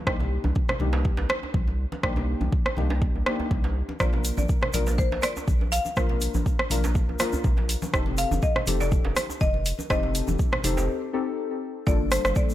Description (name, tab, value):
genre	afro house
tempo	122 BPM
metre	4/4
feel	swing 54% on 16ths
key	unclear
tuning	A4 = 440 Hz
part	deep mellow chord stab	stabs	0.0-12.5 s	Bb3 to Bb4	-31 LUFS	left 4 dB	chorus, sidechain pumping, digital delay
part	round analog bass	bass	0.1-12.3 s	F1 to C2	-27 LUFS	equal	sidechain pumping
part	deep house drum kit	drums	0.1-12.3 s	hi-hat, rim click	-28 LUFS	right 1 dB	overdrive
part	electronic kick drum	drums	0.1-12.5 s	none	-25 LUFS	equal	none
part	congas	percussion	0.1-10.7 s	none	-36 LUFS	left 4 dB	none
part	djembe	percussion	0.2-10.9 s	none	-36 LUFS	right 3 dB	none
part	marimba with medium hard mallets	melody	4.0-12.5 s	C5 to F5	-31 LUFS	left 2 dB	digital delay
part	tube shaker	percussion	4.0-12.5 s	none	-38 LUFS	left 1 dB	none
part	dark analog pad	sustained chords	12.1-12.5 s	G3 to A4	-33 LUFS	equal	chorus, sidechain pumping
room	little or no reverb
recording	none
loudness	-22 LUFS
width	side -13 dB against mid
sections	0.0-11.9 A section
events	break 10.9-11.9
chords	0.1 Cm7; 4.0 Bb; 7.9 F7; 11.9 Gm7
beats	| 0.07 0.56 1.05 1.54 | 2.03 2.53 3.02 3.51 | 4.00 4.49 4.99 5.48 | 5.97 6.46 6.95 7.44 | 7.94 8.43 8.92 9.41 | 9.90 10.39 10.89 11.38 | 11.87 12.36